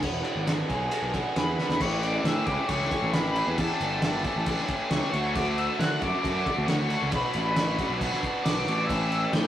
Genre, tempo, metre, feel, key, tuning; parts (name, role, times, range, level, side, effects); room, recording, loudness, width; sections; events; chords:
indie rock; 136 BPM; 4/4; straight; A mixolydian; A4 = 441 Hz
biting overdriven guitar; riff; 0.0-9.5 s; E3 to G#4; -30 LUFS; equal
fuzz picked electric bass; bass; 0.0-9.5 s; E1 to D3; -30 LUFS; equal; overdrive
cloth-damped thuddy drum kit; drums; 0.0-9.4 s; crash cymbal, kick drum, ride cymbal, snare drum; -29 LUFS; equal
sync lead; melody; 1.4-9.5 s; A5 to G6; -31 LUFS; left 2 dB; chorus
moderate studio reverb, RT60 0.7 s; rough rehearsal-room recording, warm saturation; -24 LUFS; side -11 dB against mid
0.0-1.8 A section; 1.8-9.5 B section
drum fill 1.6
0.0 E7; 1.8 A7; 5.1 Dmaj7; 7.1 Bm7; 8.9 A7